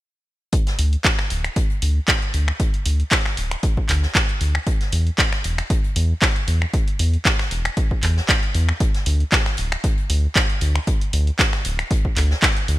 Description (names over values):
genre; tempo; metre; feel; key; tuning
deep house; 116 BPM; 4/4; swing 55% on 16ths; unclear; A4 = 441 Hz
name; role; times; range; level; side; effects
electronic kick drum; drums; 0.5-12.5 s; none; -20 LUFS; equal; none
loose indie drum kit; drums; 0.5-12.8 s; hi-hat, snare drum; -31 LUFS; left 2 dB; high-pass filter on hats, high-pass filter on snare, high-pass filter on room
punchy analog drum machine; drums; 0.5-12.8 s; finger snaps, handclaps, hi-hat; -22 LUFS; equal; none
round analog bass; bass; 0.8-12.8 s; D1 to E2; -19 LUFS; equal; sidechain pumping
room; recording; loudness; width
studio ambience; bright 1980s-style digital production; -17 LUFS; side -16 dB against mid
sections
0.5-12.8 A section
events
none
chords
none